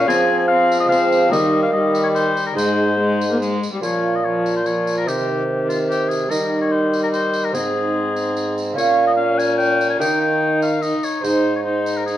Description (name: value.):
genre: classical, renaissance-style consort dance.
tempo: 146 BPM.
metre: 3/4.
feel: straight.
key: Bb dorian.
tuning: A4 = 437 Hz.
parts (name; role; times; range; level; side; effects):
warm oboe; melody; 0.0-12.2 s; F4 to Ab5; -22 LUFS; left 4 dB; none.
lute; accompaniment; 0.0-12.2 s; Ab2 to Ab4; -24 LUFS; right 4 dB; none.
rich viola; accompaniment; 0.0-12.2 s; Eb3 to Eb4; -24 LUFS; left 2 dB; none.
warm bassoon; bass; 0.0-12.2 s; Ab2 to F3; -20 LUFS; right 1 dB; none.
tambourine; percussion; 0.1-12.2 s; none; -34 LUFS; right 3 dB; none.
room: wet stone room reverb, RT60 1.2 s.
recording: worn, warbling old tape, cassette tape, warbly pitch drift.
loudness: -16 LUFS.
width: side -12 dB against mid.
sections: 0.0-3.8 A section; 3.8-12.2 B section.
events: none.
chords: 0.1 Fm; 1.3 Eb; 2.6 Ab; 3.8 Bbm; 5.1 Cm; 6.3 Eb; 7.5 Ab; 8.8 Bbm; 10.0 Eb; 11.2 Ab.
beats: | 0.08 0.49 0.91 | 1.32 1.73 2.15 | 2.56 2.99 3.41 | 3.82 4.24 4.65 | 5.07 5.48 5.89 | 6.30 6.72 7.13 | 7.54 7.95 8.36 | 8.77 9.18 9.60 | 10.01 10.42 10.83 | 11.24 11.66 12.07.